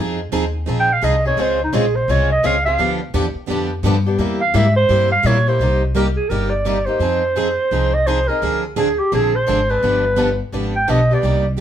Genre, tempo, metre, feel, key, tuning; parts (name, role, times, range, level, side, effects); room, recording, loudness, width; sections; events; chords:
acoustic string swing (jazz manouche); 171 BPM; 4/4; swing 62% on 8ths; C minor from 5.6 s; A4 = 440 Hz
picked plugged-in steel-string acoustic guitar; accompaniment; 0.0-11.6 s; C3 to Ab4; -24 LUFS; right 5 dB
picked swing-style acoustic guitar; accompaniment; 0.0-11.4 s; C3 to Ab4; -24 LUFS; left 5 dB
upright bass; bass; 0.0-11.6 s; G1 to Bb2; -20 LUFS; left 1 dB
mellow clarinet; melody; 0.8-11.5 s; Eb4 to G5; -18 LUFS; right 2 dB
moderate studio reverb, RT60 0.7 s; band playing live in one room; -15 LUFS; side -10 dB against mid
0.0-5.6 A section; 5.6-11.6 B section
clarinet solo 0.0-5.6
0.0 Fm7; 1.4 Dbmaj7; 2.8 G7; 4.2 C7; 5.6 Cm7; 7.0 Fm7; 8.4 Dm7b5; 9.8 G7